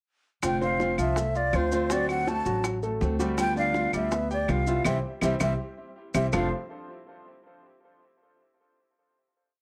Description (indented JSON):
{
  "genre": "latin, Cuban son and guajira",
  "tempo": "163 BPM",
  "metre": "4/4",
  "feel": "straight",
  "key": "F major",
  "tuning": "A4 = 440 Hz",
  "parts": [
    { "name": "breathy jazz flute", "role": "melody", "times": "0.4-6.5 s", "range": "C5 to A5", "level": "-31 LUFS", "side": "equal", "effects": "plate reverb" },
    { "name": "nylon-string guitar", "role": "accompaniment", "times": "0.4-6.5 s", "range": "F2 to F#4", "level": "-34 LUFS", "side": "equal", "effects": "plate reverb" },
    { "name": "upright bass", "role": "bass", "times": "0.4-6.5 s", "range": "F1 to D2", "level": "-33 LUFS", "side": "equal", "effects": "none" },
    { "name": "bongos", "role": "percussion", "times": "0.4-6.4 s", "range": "none", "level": "-35 LUFS", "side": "equal", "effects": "none" },
    { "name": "claves", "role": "percussion", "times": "0.4-6.4 s", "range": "none", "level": "-38 LUFS", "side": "equal", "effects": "none" },
    { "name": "maracas", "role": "percussion", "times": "0.4-6.4 s", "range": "none", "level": "-43 LUFS", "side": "equal", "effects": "none" },
    { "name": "clear concert grand piano", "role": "arpeggios", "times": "0.6-6.5 s", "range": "F3 to G5", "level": "-34 LUFS", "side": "equal", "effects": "plate reverb, tape echo" }
  ],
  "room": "moderate studio reverb, RT60 0.6 s",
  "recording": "cassette tape",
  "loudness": "-27 LUFS",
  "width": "mono",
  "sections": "0.4-6.3 verse; 6.3-7.8 final chord",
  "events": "band accent 4.9-6.3; drum fill 5.4-6.3",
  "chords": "0.4 F6; 1.9 D7; 3.4 G7/D; 4.9 C; 6.3 F6"
}